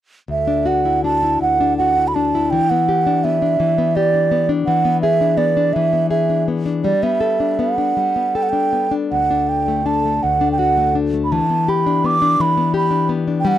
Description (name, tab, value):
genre	celtic folk, Celtic slow air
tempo	79-87 BPM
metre	3/4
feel	rubato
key	unclear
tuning	A4 = 440 Hz
part	mellow baroque flute	melody	0.3-13.6 s	D5 to D6	-17 LUFS	right 4 dB	none
part	nylon-string guitar	accompaniment	0.3-13.6 s	D2 to A4	-18 LUFS	left 5 dB	none
room	little or no reverb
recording	dry, close 1970s-style studio recording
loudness	-15 LUFS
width	side -11 dB against mid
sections	0.3-13.6 A section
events	none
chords	0.3 Dadd9; 2.5 Em7; 4.7 E7; 6.8 Gadd9; 9.1 D; 11.3 Em7